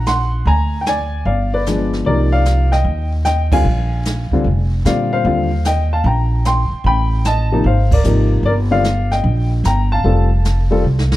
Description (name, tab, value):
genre	jazz piano trio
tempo	150 BPM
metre	4/4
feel	swing 66% on 8ths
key	Bb major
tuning	A4 = 440 Hz
part	warm baby grand piano	melody	0.0-11.1 s	C3 to C6	-18 LUFS	left 2 dB	none
part	upright bass	bass	0.0-11.2 s	F1 to Bb2	-16 LUFS	equal	none
part	jazz brush drum kit	drums	0.1-11.2 s	brushed snare drum, crash cymbal, hi-hat, kick drum, snare drum	-21 LUFS	right 1 dB	none
room	light reverb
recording	dark, warm production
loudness	-13 LUFS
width	side -16 dB against mid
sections	0.0-11.2 A section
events	band accent 3.5, 7.8; drum fill 10.8-11.2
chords	0.5 Bb7/D; 1.3 G7b9; 2.1 Cm9; 3.7 Bb9; 5.3 Eb69; 6.9 A7(b5, no3); 7.6 Ab69; 8.4 Gm7; 10.0 Fadd9